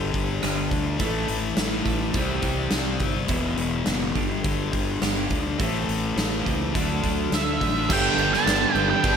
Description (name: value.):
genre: quiet-loud alternative rock.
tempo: 104 BPM.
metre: 4/4.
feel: straight.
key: unclear.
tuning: A4 = 440 Hz.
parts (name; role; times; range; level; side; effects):
twelve-string electric guitar; arpeggios; 0.0-7.9 s; E2 to C4; -32 LUFS; right 7 dB; slapback echo.
thick fuzz guitar; riff; 0.0-9.2 s; E2 to G4; -26 LUFS; left 5 dB; distortion, slapback echo.
fuzz fingered electric bass; bass; 0.0-9.2 s; E1 to D2; -29 LUFS; right 1 dB; overdrive.
huge arena drum kit; drums; 0.1-9.2 s; crash cymbal, hi-hat, kick drum, rim click, snare drum; -27 LUFS; right 1 dB; none.
octave-fuzz lead guitar; melody; 7.3-9.2 s; E5 to A5; -23 LUFS; right 6 dB; distortion, slapback echo.
warm chamber string section; sustained chords; 7.9-9.2 s; G4 to A5; -34 LUFS; right 4 dB; none.
thick fuzz guitar; riff; 7.9-8.9 s; G2 to D4; -27 LUFS; right 13 dB; distortion, slapback echo.
room: moderate lush hall reverb, RT60 2.3 s.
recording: big arena sound.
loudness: -21 LUFS.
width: side -7 dB against mid.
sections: 0.0-7.9 A section; 7.9-9.2 B section.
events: none.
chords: 0.0 G5; 1.0 A5; 2.1 C; 3.3 Esus2; 4.2 G5; 5.6 Am; 6.7 Dadd9; 7.9 Gadd9.